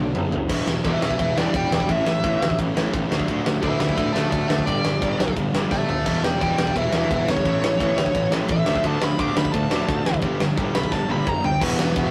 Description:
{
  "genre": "punk rock",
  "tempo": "173 BPM",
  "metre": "4/4",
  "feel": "straight",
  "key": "E dorian",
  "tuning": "A4 = 441 Hz",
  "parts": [
    { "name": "smooth overdriven lead guitar", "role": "melody", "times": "0.0-12.1 s", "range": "B3 to D6", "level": "-27 LUFS", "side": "equal", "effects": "none" },
    { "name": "thick fuzz guitar", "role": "riff", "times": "0.0-12.1 s", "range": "G2 to E4", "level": "-35 LUFS", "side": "equal", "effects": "none" },
    { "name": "fuzz picked electric bass", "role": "bass", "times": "0.0-12.1 s", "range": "E1 to D2", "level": "-28 LUFS", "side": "equal", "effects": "overdrive" },
    { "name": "big rock drum kit", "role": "drums", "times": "0.1-12.0 s", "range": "crash cymbal, kick drum, ride cymbal, snare drum, toms", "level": "-27 LUFS", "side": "equal", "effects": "none" },
    { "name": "crunchy overdriven guitar", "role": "riff", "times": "0.5-12.1 s", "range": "E2 to D4", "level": "-30 LUFS", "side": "equal", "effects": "none" },
    { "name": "distorted electric guitar", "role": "riff", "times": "0.5-12.1 s", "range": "E2 to D4", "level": "-34 LUFS", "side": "equal", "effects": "none" }
  ],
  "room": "light reverb",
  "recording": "rough rehearsal-room recording, warm saturation",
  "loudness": "-22 LUFS",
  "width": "mono",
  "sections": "0.5-11.6 A section",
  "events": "drum fill 0.0-0.5, 5.7-6.1, 10.9-11.6; lead electric guitar solo 0.5-11.6",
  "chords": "0.5 Em; 1.9 A; 3.1 D; 4.7 G; 6.1 Em; 7.5 A; 8.7 D; 10.2 G"
}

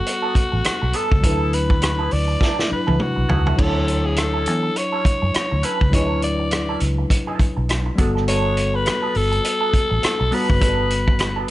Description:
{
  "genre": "lush 1970s-style soul",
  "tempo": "102 BPM",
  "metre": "4/4",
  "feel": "swing 58% on 16ths",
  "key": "D major",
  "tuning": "A4 = 440 Hz",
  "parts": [
    { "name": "raspy alto saxophone", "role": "melody", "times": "0.0-11.5 s", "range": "F#4 to D5", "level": "-23 LUFS", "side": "left 2 dB", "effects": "none" },
    { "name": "tine electric piano", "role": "accompaniment", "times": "0.0-11.5 s", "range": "F#3 to C#5", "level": "-26 LUFS", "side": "left 2 dB", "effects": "none" },
    { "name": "electric guitar through a small old amp", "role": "riff", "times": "0.1-11.5 s", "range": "F#3 to A4", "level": "-29 LUFS", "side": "right 7 dB", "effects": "wah" },
    { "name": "vintage drum kit", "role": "drums", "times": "0.1-11.5 s", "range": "crash cymbal, hi-hat, kick drum, rim click, snare drum, toms", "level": "-21 LUFS", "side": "equal", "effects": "none" },
    { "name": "vintage muted fingered electric bass", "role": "bass", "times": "0.4-11.5 s", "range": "F#1 to F#2", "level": "-22 LUFS", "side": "equal", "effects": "none" }
  ],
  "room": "little or no reverb",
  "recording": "nothing above 11.0 kHz",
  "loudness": "-17 LUFS",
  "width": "side -15 dB against mid",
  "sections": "0.0-3.6 A section; 3.6-11.5 A section",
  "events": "drum fill 2.4-3.6",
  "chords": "0.0 Gmaj9; 1.2 D69; 8.0 Gmaj9"
}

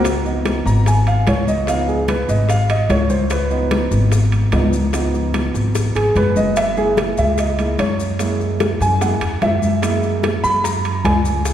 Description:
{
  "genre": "Afro-Cuban jazz",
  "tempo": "147 BPM",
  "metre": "4/4",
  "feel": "straight",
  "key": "Db mixolydian",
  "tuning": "A4 = 443 Hz",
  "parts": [
    { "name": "warm concert grand piano", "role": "accompaniment", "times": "0.0-11.5 s", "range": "F3 to Cb6", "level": "-19 LUFS", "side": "right 2 dB", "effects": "none" },
    { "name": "upright bass", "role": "bass", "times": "0.0-11.5 s", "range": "Gb1 to Gb2", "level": "-18 LUFS", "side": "equal", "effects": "none" },
    { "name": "bongos", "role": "percussion", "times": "0.0-11.5 s", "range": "none", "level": "-28 LUFS", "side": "left 4 dB", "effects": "none" },
    { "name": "congas", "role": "percussion", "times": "0.1-11.5 s", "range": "none", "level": "-24 LUFS", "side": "left 3 dB", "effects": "none" },
    { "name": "maracas", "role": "percussion", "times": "0.1-11.5 s", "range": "none", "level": "-35 LUFS", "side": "left 5 dB", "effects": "none" },
    { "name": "timbales", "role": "percussion", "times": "0.1-11.5 s", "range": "none", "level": "-28 LUFS", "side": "right 3 dB", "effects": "none" }
  ],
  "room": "wet concert hall reverb, RT60 2.2 s",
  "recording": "recorded in a church or concert hall",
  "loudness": "-15 LUFS",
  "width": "side -10 dB against mid",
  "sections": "0.0-11.5 A section",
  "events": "grand piano solo 0.0-11.5; drum fill 5.8-6.6",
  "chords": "0.0 Db9; 6.6 Gb9"
}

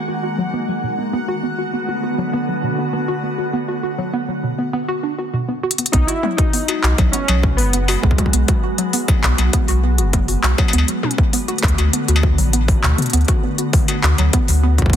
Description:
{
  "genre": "IDM",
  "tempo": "100 BPM",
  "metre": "4/4",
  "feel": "straight",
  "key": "unclear",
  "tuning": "A4 = 440 Hz",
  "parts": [
    { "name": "glassy FM pad", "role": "sustained chords", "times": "0.0-15.0 s", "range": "D3 to F#4", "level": "-24 LUFS", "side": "equal", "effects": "ensemble chorus, built-in reverb" },
    { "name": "warbly dusty pluck", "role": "arpeggios", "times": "0.0-15.0 s", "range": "B2 to F#4", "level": "-24 LUFS", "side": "right 1 dB", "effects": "chorus, digital delay" },
    { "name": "bubbling stepped-filter texture", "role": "texture", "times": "0.0-4.7 s", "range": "F#5", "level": "-30 LUFS", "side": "right 1 dB", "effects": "chorus, built-in reverb, sidechain pumping" },
    { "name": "industrial drum kit", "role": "drums", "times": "5.7-15.0 s", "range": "handclaps, hi-hat, struck metal, toms", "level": "-21 LUFS", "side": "left 2 dB", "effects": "overdrive" },
    { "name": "warbly lo-fi synth keys", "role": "melody", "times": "5.9-8.6 s", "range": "G#3 to E4", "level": "-25 LUFS", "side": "right 1 dB", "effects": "chorus, vintage 12-bit sampler grit, digital delay" },
    { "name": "warm sub bass", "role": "bass", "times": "5.9-15.0 s", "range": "F#1 to D2", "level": "-16 LUFS", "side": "equal", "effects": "tube saturation" },
    { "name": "electronic kick drum", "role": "drums", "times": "5.9-15.0 s", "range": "none", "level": "-17 LUFS", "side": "equal", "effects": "distortion, overdrive" }
  ],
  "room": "light reverb",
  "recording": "dense, heavily limited modern master",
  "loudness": "-15 LUFS",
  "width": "side -10 dB against mid",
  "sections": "0.0-5.9 A section; 5.9-15.0 B section",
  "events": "filter sweep on ambient pad 0.0-5.9; filter sweep on synth arpeggio sound 0.0-5.9; drum fill 5.6",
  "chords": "0.0 B6; 1.1 D6; 5.9 B5; 10.7 D6"
}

